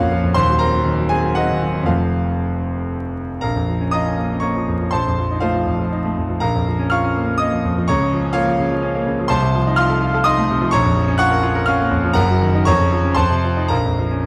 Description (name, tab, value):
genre	classical, virtuoso piano study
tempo	108-127 BPM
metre	3/4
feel	rubato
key	Bb minor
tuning	A4 = 439 Hz
part	clear concert grand piano	solo	0.0-14.3 s	Eb1 to Gb6	-18 LUFS	equal	none
room	light reverb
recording	close, detailed microphones, vinyl crackle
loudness	-18 LUFS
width	mono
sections	0.0-3.4 A section; 3.4-14.3 B section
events	none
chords	0.4 Cdim/Eb; 1.9 F; 3.4 Bbm; 4.9 F7/Bb; 6.4 Bbm; 7.9 Bbm/Db; 9.3 F7/C; 10.7 Bbm; 12.2 Ebm/Gb; 12.7 Bbm/F; 13.2 F7; 13.7 Bbm